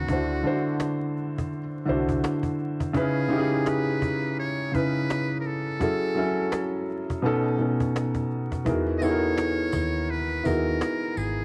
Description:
lo-fi hip hop; 84 BPM; 4/4; swing 62% on 16ths; A4 = 440 Hz
trumpet with metal mute; melody; 0.0-11.4 s; F#4 to D#5; -35 LUFS; equal; low-pass filter, cassette tape
felt-muted upright piano; accompaniment; 0.0-11.4 s; B2 to G#5; -27 LUFS; equal; cassette tape, low-pass filter
vintage muted fingered electric bass; bass; 0.0-2.2, 8.7-11.4 s; G#1 to E2; -33 LUFS; equal
cajon; drums; 0.1-11.3 s; -34 LUFS; equal; cassette tape
tambourine; percussion; 9.0-11.4 s; -51 LUFS; equal
light reverb; home recording on cassette, vinyl crackle; -26 LUFS; mono
0.0-11.4 A section
0.1 D9; 2.9 C#m9; 5.8 F#m9; 7.2 B9; 8.7 Emaj9#11

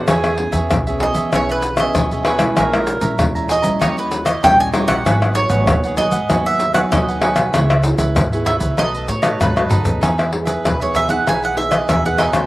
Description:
samba and choro; 96 BPM; 4/4; straight; B major; A4 = 441 Hz
breathy tenor saxophone; second line; 0.0-3.3 s; G#4 to B4; -23 LUFS; right 2 dB
cavaquinho; accompaniment; 0.0-12.5 s; D#4 to A#5; -23 LUFS; right 2 dB; slapback echo
nylon-string guitar; accompaniment; 0.0-12.5 s; F#2 to G#4; -24 LUFS; equal
upright bass; bass; 0.0-12.5 s; G#1 to E3; -23 LUFS; equal
egg shaker, surdo, pandeiro and tamborim; percussion; 0.1-12.5 s; -18 LUFS; left 2 dB
mandolin; melody; 1.0-12.5 s; B4 to G#5; -19 LUFS; right 2 dB
little or no reverb; recorded outdoors, with no room sound, lossy compression artefacts; -14 LUFS; side -17 dB against mid
0.0-10.0 A section; 10.0-12.5 B section
drum fill 9.6-10.0; mandolin solo 10.0-12.5
0.1 E6; 2.6 A#m7b5; 3.8 D#7b9; 5.1 G#m7; 7.5 C#m7; 8.8 B7; 10.0 Emaj7

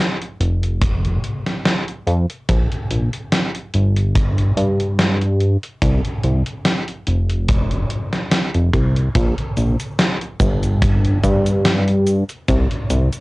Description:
vaporwave; 72 BPM; 4/4; swing 54% on 16ths; A4 = 440 Hz
gated 80s digital drum machine; drums; 0.2-13.2 s; cabasa, hi-hat, snare drum; -20 LUFS; equal; gated reverb, gated reverb snare, cassette tape
chorused synth bass; bass; 0.4-13.1 s; F1 to G2; -16 LUFS; equal; tube saturation
kick drum; drums; 0.8-12.7 s; -21 LUFS; equal; cassette tape
little or no reverb; home recording on cassette; -16 LUFS; side -22 dB against mid
0.0-9.2 A section; 9.2-13.2 B section

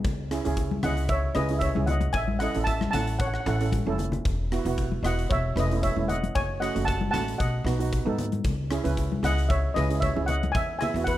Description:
calypso; 114 BPM; 4/4; swing 53% on 16ths; A4 = 441 Hz
steel pan; accompaniment; 0.0-11.2 s; A3 to B4; -31 LUFS; right 6 dB
upright bass; bass; 0.0-11.2 s; E1 to G#2; -28 LUFS; equal
gated 80s drum kit; drums; 0.0-11.2 s; hi-hat, kick drum, rim click; -32 LUFS; left 1 dB
congas; percussion; 0.7-10.9 s; -32 LUFS; left 4 dB
steel pan; melody; 0.8-11.2 s; B4 to A5; -28 LUFS; equal
little or no reverb; -24 LUFS; side -14 dB against mid
0.0-11.2 A section
drum fill 3.7-4.2
0.0 C#madd9; 2.1 A; 4.2 Esus2; 5.3 A/E; 6.3 F#m; 7.4 B; 8.4 C#madd9; 10.5 Eadd9

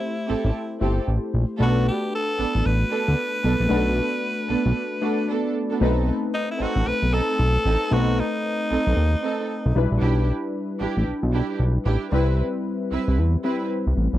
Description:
R&B; 114 BPM; 4/4; swing 61% on 16ths; A4 = 440 Hz
raspy tenor saxophone; melody; 0.0-9.8 s; D#4 to B4; -26 LUFS; equal; slapback echo
warm analog keys; accompaniment; 0.0-14.2 s; G3 to D5; -27 LUFS; left 4 dB; chorus
dark studio string section; stabs; 0.3-13.6 s; B3 to B4; -28 LUFS; right 7 dB
fat analog bass; bass; 0.3-14.2 s; G1 to E2; -20 LUFS; equal
little or no reverb; dry, close 1970s-style studio recording; -20 LUFS; side -14 dB against mid
0.0-5.8 A section; 5.8-14.2 B section
break 4.8-5.8
0.0 Am7; 1.6 Bm7; 5.8 B7b9; 9.8 Em7; 12.1 Cmaj7

